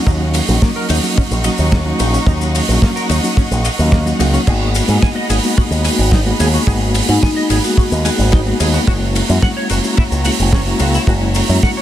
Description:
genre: nu-disco, nu disco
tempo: 109 BPM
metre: 4/4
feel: straight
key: G# minor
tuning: A4 = 439 Hz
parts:
  - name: mellow reed electric piano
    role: accompaniment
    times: 0.0-11.8 s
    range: F#3 to F#4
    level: -19 LUFS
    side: left 1 dB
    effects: fast tremolo, sidechain pumping, dub echo
  - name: clear symphonic violin section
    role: sustained chords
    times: 0.0-11.8 s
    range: D#4 to C#6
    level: -25 LUFS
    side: right 1 dB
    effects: sidechain pumping
  - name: semi-hollow electric guitar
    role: riff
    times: 0.1-11.8 s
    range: A#3 to G#5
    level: -26 LUFS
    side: equal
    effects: wide subtle chorus, dub echo
  - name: picked electric bass with an envelope filter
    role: bass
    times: 0.1-11.6 s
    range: F#1 to G#2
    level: -16 LUFS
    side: equal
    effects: none
  - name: damped 70s drum kit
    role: drums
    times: 0.1-11.7 s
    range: crash cymbal, hi-hat, ride cymbal, shaker, snare drum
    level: -20 LUFS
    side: right 1 dB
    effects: dub echo
  - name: kick drum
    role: drums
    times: 0.1-11.7 s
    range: none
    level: -13 LUFS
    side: equal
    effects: none
  - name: vibraphone with hard mallets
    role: melody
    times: 5.8-8.3 s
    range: D#4 to F#4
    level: -23 LUFS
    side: left 2 dB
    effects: dub echo
room: little or no reverb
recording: echo-heavy mix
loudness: -12 LUFS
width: side -12 dB against mid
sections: 0.0-11.8 A section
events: none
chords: 0.0 D#m7; 4.5 G#m7; 8.9 F#7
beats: | 0.07 0.62 1.17 1.72 | 2.27 2.82 3.37 3.92 | 4.47 5.02 5.57 6.12 | 6.67 7.22 7.77 8.32 | 8.88 9.43 9.98 10.53 | 11.08 11.63

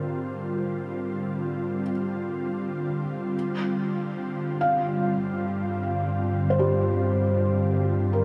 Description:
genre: ambient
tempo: free time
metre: none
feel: none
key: unclear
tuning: A4 = 440 Hz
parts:
  - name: ethereal airy pad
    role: sustained chords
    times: 0.0-8.2 s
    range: D3 to F4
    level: -29 LUFS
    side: equal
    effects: ensemble chorus, built-in reverb
  - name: felt-muted upright piano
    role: arpeggios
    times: 0.0-8.2 s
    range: G3 to F5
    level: -32 LUFS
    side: equal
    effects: diffuse ambient delay
  - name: deep rumbling drone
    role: bass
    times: 0.0-8.2 s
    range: G2 to Ab2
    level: -32 LUFS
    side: equal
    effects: built-in reverb
room: wet huge ambient reverb, RT60 7.7 s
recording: none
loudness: -26 LUFS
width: mono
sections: 0.0-8.2 A section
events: none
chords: 0.0 Abmaj7; 3.3 G7(no3)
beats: free time

